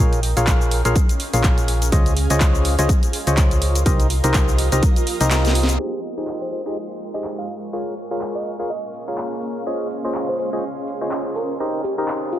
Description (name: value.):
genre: piano house.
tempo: 124 BPM.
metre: 4/4.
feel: swing 57% on 16ths.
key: unclear.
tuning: A4 = 442 Hz.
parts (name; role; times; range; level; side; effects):
percussive organ stab; riff; 0.0-12.4 s; Eb4 to F5; -24 LUFS; left 1 dB; chorus, sidechain pumping, dub echo.
solid FM bass; bass; 0.0-5.8 s; Bb1 to Db2; -19 LUFS; equal; tube saturation, sidechain pumping.
granular cloud pad; texture; 0.0-12.4 s; Ab3 to G5; -29 LUFS; right 2 dB; built-in reverb, sidechain pumping.
house drum kit; drums; 0.1-12.4 s; cabasa, crash cymbal, handclaps, hi-hat, snare drum; -26 LUFS; equal; overdrive.
electronic kick drum; drums; 0.5-4.9 s; none; -17 LUFS; equal; overdrive.
dark chamber violin section; sustained chords; 5.8-12.4 s; Ab3 to Db6; -37 LUFS; right 2 dB; sidechain pumping.
bell-like FM electric piano; melody; 6.4-12.4 s; F4 to F5; -29 LUFS; equal; chorus, cassette tape, dub echo.
room: light reverb.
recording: low-pass filter.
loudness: -18 LUFS.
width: side -12 dB against mid.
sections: 0.0-5.8 A section; 5.8-12.4 B section.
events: kick drops out 5.3-5.8; drum fill 5.3-5.8; band accent 5.6; filter sweep 5.8-12.4.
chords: 0.0 Bbm7; 1.9 Dbmaj9; 3.9 Cm7; 5.8 Abmaj7; 7.5 Bbm7; 9.7 Dbmaj9; 11.6 Cm7.